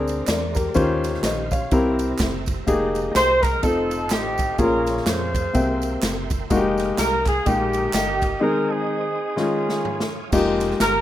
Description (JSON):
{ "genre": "uptempo gospel", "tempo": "125 BPM", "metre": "4/4", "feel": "swing 58% on 8ths", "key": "unclear", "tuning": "A4 = 436 Hz", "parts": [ { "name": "warm grand piano", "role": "accompaniment", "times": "0.0-10.9 s", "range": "Bb2 to G5", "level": "-22 LUFS", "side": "left 2 dB", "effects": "none" }, { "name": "percussive tonewheel organ", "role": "sustained chords", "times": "0.0-11.0 s", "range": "Ab3 to Eb6", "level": "-35 LUFS", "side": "right 4 dB", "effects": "fast rotary speaker, overdrive, chorus vibrato" }, { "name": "fingered electric bass", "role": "bass", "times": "0.0-11.0 s", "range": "F1 to F2", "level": "-29 LUFS", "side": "right 1 dB", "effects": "none" }, { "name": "swinging big-band drum kit", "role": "drums", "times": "0.1-10.9 s", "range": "crash cymbal, kick drum, ride cymbal, snare drum, toms", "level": "-26 LUFS", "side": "right 1 dB", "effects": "none" }, { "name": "tambourine and handclaps", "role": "percussion", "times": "0.1-10.9 s", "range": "none", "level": "-34 LUFS", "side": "right 7 dB", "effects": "none" }, { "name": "mellow horn section", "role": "melody", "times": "3.2-11.0 s", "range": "Bb3 to C5", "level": "-22 LUFS", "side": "right 1 dB", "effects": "none" } ], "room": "small room ambience", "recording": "rough home demo mix", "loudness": "-19 LUFS", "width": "side -12 dB against mid", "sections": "0.0-10.3 A section", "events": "break 8.4-10.3; drum fill 9.4-10.3", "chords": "0.0 Bb9; 0.8 Eb13; 1.7 C7; 2.7 Fm11; 3.6 F7; 4.6 Bbm7; 5.5 C7; 6.5 Fm11; 8.4 Ab/Eb; 9.4 Eb9sus4; 10.3 Fm11" }